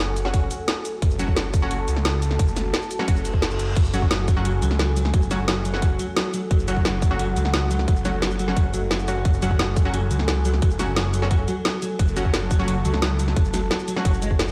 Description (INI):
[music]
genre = dark technical drum and bass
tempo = 175 BPM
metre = 4/4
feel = straight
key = F# minor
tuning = A4 = 440 Hz
[part]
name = dark analog pad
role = sustained chords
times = 0.0-14.5 s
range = F#4 to A5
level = -33 LUFS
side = equal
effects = chorus, sidechain pumping
[part]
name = phased detuned saw bass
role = bass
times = 0.0-14.5 s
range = F#1 to C#2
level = -27 LUFS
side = equal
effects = phaser, overdrive, sidechain pumping
[part]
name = drum and bass drum kit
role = drums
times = 0.2-14.5 s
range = crash cymbal, hi-hat, shaker, snare drum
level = -29 LUFS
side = equal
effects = none
[part]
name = orchestra-hit-like synth stab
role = stabs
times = 0.3-14.5 s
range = F#3 to F#4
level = -33 LUFS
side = equal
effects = built-in reverb, cassette tape, tape echo
[part]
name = electronic kick drum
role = drums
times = 0.3-14.4 s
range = none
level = -22 LUFS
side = equal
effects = none
[part]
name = reverse cymbal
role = sound effects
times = 3.2-3.8 s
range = none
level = -39 LUFS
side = equal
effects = none
[part]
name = clean electric guitar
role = arpeggios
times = 3.8-14.5 s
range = F#3 to G#3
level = -32 LUFS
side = equal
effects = ensemble chorus, sidechain pumping, tape echo
[sound]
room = light reverb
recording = played on a big sound system in a bare room, stone room reverb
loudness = -22 LUFS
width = mono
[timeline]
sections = 0.0-14.5 A section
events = reverse cymbal 3.2-3.8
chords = 0.0 F#madd9